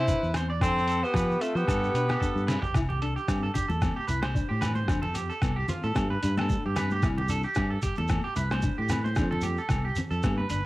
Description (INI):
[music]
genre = highlife guitar band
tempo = 112 BPM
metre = 4/4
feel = swing 55% on 16ths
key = C major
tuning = A4 = 439 Hz
[part]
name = warm tenor saxophone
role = melody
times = 0.0-2.5 s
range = A3 to E4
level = -27 LUFS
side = equal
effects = cassette tape
[part]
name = warm trumpet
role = second line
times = 0.0-2.5 s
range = F4 to C5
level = -36 LUFS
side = left 2 dB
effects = cassette tape
[part]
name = mellow electric guitar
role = accompaniment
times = 0.0-10.6 s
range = G3 to E4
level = -37 LUFS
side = left 4 dB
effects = ensemble chorus, cassette tape
[part]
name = clean electric guitar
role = arpeggios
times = 0.0-10.6 s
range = F4 to D5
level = -33 LUFS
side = right 3 dB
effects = cassette tape, tape echo
[part]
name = fingered electric bass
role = bass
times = 0.0-10.7 s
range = G1 to F3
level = -29 LUFS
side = equal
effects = tube saturation
[part]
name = trip hop sampler-style drum kit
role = drums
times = 0.1-10.6 s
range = hi-hat, kick drum, rim click, snare drum, toms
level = -30 LUFS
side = equal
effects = cassette tape
[part]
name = shekere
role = percussion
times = 0.1-10.6 s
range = none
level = -37 LUFS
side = right 1 dB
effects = none
[part]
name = agogo bells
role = percussion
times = 0.3-10.4 s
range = none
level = -41 LUFS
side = left 6 dB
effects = none
[part]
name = congas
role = percussion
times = 2.9-10.4 s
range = none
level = -37 LUFS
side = left 1 dB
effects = none
[sound]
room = light reverb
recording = home recording on cassette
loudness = -25 LUFS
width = side -18 dB against mid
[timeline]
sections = 0.0-2.8 A section; 2.8-10.7 B section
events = drum fill 2.2-2.8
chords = 0.0 C; 0.6 F; 1.7 G; 2.8 C; 4.9 Fadd9; 6.0 G; 7.0 C; 9.2 Fadd9